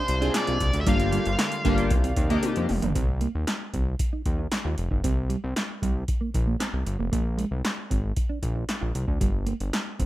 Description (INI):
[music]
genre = early-eighties boogie funk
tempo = 115 BPM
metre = 4/4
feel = straight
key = C minor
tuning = A4 = 435 Hz
[part]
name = nasal lead guitar with a parked wah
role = melody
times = 0.0-2.4 s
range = C5 to F5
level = -30 LUFS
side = equal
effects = overdrive
[part]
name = warm analog pad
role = sustained chords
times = 0.0-2.9 s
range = C3 to D5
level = -35 LUFS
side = right 1 dB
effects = chorus
[part]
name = mellow electric guitar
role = riff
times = 0.0-10.1 s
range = G3 to F4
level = -32 LUFS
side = right 5 dB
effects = wide subtle chorus
[part]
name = fat analog bass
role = bass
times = 0.1-10.1 s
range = F1 to F2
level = -27 LUFS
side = equal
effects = none
[part]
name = electro analog drum machine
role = drums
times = 0.1-10.1 s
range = handclaps, hi-hat, kick drum, snare drum, toms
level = -27 LUFS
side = equal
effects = overdrive
[part]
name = chorused polysynth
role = accompaniment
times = 0.2-2.7 s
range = Bb3 to Ab4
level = -28 LUFS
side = left 3 dB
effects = none
[sound]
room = digital ambience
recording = rough home demo mix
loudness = -23 LUFS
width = side -15 dB against mid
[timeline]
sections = 0.0-3.0 A section; 3.0-10.1 B section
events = drum fill 2.4-3.0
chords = 0.0 Bb9; 0.9 Gm7; 1.9 Cm9; 3.0 Cm7; 7.1 Bb9; 9.2 Gm